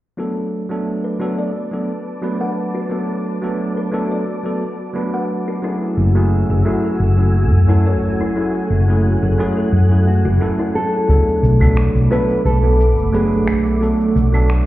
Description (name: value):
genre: sunset chillout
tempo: 88 BPM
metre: 4/4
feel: straight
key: unclear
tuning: A4 = 440 Hz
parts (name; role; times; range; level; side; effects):
- bell-like tine electric piano; accompaniment; 0.2-14.7 s; F#3 to B4; -21 LUFS; right 1 dB; auto-pan, low-pass filter, tape echo
- soft string machine; sustained chords; 0.9-14.7 s; A3 to F#6; -24 LUFS; right 1 dB; ensemble chorus
- kalimba; arpeggios; 0.2-11.1 s; E4 to F#5; -28 LUFS; left 2 dB; low-pass filter, tape echo
- hollow-body short-scale fingered electric bass; bass; 6.0-14.6 s; F#1 to F#2; -14 LUFS; equal; none
- nylon-string guitar; melody; 10.1-13.6 s; F#4 to B4; -20 LUFS; equal; vintage 12-bit sampler grit, tape echo
- electronic kick drum; drums; 11.1-11.7 s; none; -14 LUFS; equal; none
- electronic shaker, claves and finger snaps; drums; 11.1-14.6 s; none; -29 LUFS; equal; overdrive, low-pass filter on perc, low-pass filter on snare
room: light reverb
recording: heard muffled through a wall, stone room reverb, EQ, nothing above 10.8 kHz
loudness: -15 LUFS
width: side -16 dB against mid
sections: 0.2-11.1 A section; 11.1-14.7 B section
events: filter sweep on tine electric piano 0.2-11.1; filter sweep on kalimba 0.2-11.1; break 10.4-11.1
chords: 0.2 Bm7; 5.6 F#m9; 11.1 Bm7